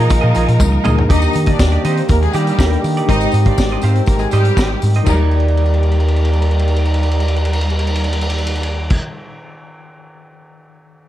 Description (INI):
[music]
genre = disco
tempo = 121 BPM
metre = 4/4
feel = straight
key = Eb major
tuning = A4 = 439 Hz
[part]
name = clear baby grand piano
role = melody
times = 0.0-0.6 s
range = Eb5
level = -26 LUFS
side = left 3 dB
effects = none
[part]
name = warm studio string section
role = second line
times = 0.0-9.0 s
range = F3 to Eb5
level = -22 LUFS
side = right 1 dB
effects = none
[part]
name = semi-hollow electric guitar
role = accompaniment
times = 0.0-9.0 s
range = Eb4 to F5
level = -26 LUFS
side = right 9 dB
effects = spring reverb
[part]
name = tine electric piano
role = accompaniment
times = 0.0-11.1 s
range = Bb2 to D5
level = -25 LUFS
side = left 5 dB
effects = overdrive, fast stereo tremolo
[part]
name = warm French horn section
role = sustained chords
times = 0.0-9.0 s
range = Eb3 to D5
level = -24 LUFS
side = right 3 dB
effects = none
[part]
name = fingered electric bass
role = bass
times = 0.0-9.0 s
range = Ab1 to Eb3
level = -15 LUFS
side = equal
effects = none
[part]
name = vintage drum kit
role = drums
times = 0.1-9.0 s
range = crash cymbal, hi-hat, kick drum, ride cymbal, snare drum, toms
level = -19 LUFS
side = equal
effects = none
[part]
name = tambourine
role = percussion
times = 0.1-9.0 s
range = none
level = -35 LUFS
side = left 7 dB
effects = none
[sound]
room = light reverb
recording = dark, warm production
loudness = -13 LUFS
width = side -13 dB against mid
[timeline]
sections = 0.0-1.1 A section; 1.1-5.1 B section; 5.1-9.0 C section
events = drum fill 0.6-1.1, 5.3-8.9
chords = 0.0 Bb7sus4; 1.1 Ebmaj7; 3.1 Abmaj7; 5.1 Ebmaj7